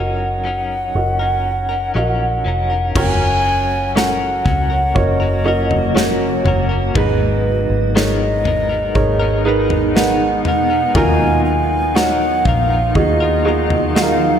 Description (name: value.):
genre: pop ballad.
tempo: 60 BPM.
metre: 4/4.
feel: straight.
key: F# major.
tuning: A4 = 437 Hz.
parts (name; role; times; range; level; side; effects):
hollow alto ocarina; melody; 0.0-14.4 s; B4 to G#5; -20 LUFS; equal; none.
dark upright piano; accompaniment; 0.0-14.4 s; G#2 to D#5; -20 LUFS; right 3 dB; slapback echo.
direct-recorded clean electric guitar; arpeggios; 0.0-14.4 s; G#2 to A#4; -25 LUFS; left 6 dB; tremolo, slapback echo.
vintage muted fingered electric bass; bass; 0.0-14.4 s; E#1 to D#2; -20 LUFS; equal; none.
granular cloud pad; sustained chords; 4.3-14.4 s; B2 to F#4; -22 LUFS; right 1 dB; built-in reverb.
modern studio drum kit; drums; 3.0-14.2 s; crash cymbal, kick drum, snare drum, toms; -20 LUFS; left 1 dB; none.
room: moderate lush hall reverb, RT60 2.6 s.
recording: big arena sound.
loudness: -14 LUFS.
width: side -8 dB against mid.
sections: 0.0-3.0 A section; 3.0-14.4 B section.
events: none.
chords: 0.0 F#6; 3.0 F#; 7.0 G#madd9; 11.0 D#madd9.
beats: 0.95 1.95 | 2.95 3.95 4.95 5.95 | 6.95 7.95 8.95 9.95 | 10.95 11.95 12.95 13.95.